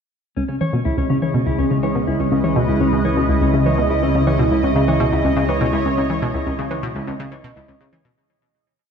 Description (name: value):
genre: ambient, sequencer-driven space music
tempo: 123 BPM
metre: 4/4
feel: straight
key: C# minor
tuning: A4 = 435 Hz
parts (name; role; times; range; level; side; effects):
- lush unison pad; sustained chords; 0.7-8.2 s; C#3 to D#5; -20 LUFS; right 1 dB; chorus, phaser
- mellow electric guitar; arpeggios; 0.4-8.0 s; C#4 to C#5; -23 LUFS; left 2 dB; auto-pan, ping-pong delay
- analog pluck; riff; 0.4-8.1 s; C#2 to E3; -21 LUFS; equal; chorus, ping-pong delay
- analog drone; bass; 1.8-8.1 s; C#2; -26 LUFS; equal; chorus
- bubbling stepped-filter texture; texture; 0.8-8.2 s; D#5; -35 LUFS; right 3 dB; chorus, built-in reverb
room: wet concert hall reverb, RT60 2.1 s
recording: dark, warm production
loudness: -16 LUFS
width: side -6 dB against mid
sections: 0.4-8.2 A section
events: fade-in on synth texture 0.4-8.2; filter sweep on synth arpeggio sound 0.4-8.2; fade-out 5.6-8.2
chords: 0.4 C#m7